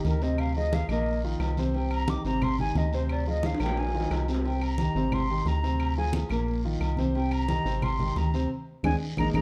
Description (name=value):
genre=latin, salsa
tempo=178 BPM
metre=4/4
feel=straight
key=unclear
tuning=A4 = 440 Hz
part: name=concert flute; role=melody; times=0.0-9.4 s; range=Bb4 to D6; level=-35 LUFS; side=equal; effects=none
part: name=warm concert grand piano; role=accompaniment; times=0.0-9.4 s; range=Bb2 to C5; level=-33 LUFS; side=equal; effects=none
part: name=rubbery square bass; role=bass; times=0.0-9.4 s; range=Ab1 to D2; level=-31 LUFS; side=equal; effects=none
part: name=agogo bells and timbales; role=percussion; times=0.0-9.4 s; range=none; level=-40 LUFS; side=equal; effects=none
part: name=congas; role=percussion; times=0.0-9.4 s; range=none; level=-35 LUFS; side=equal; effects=none
part: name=guiro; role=percussion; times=0.0-9.4 s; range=none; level=-50 LUFS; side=equal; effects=none
part: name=claves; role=percussion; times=0.4-9.4 s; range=none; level=-46 LUFS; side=equal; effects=none
room=moderate large studio reverb, RT60 1.2 s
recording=dark, warm production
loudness=-27 LUFS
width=mono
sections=0.0-9.4 A section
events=flute solo 0.0-9.4; drum fill 3.4-4.4, 9.2; band accent 8.5-9.4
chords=0.4 Dm7b5; 1.1 Bbsus4; 1.7 Cm; 2.4 Abmaj7; 3.1 Dm7b5; 3.8 Bb7sus4; 4.4 Cm7; 5.1 Abmaj7; 5.8 Dm7b5; 6.5 Bbsus4; 7.1 Cm7; 7.8 Abmaj7; 8.5 Ab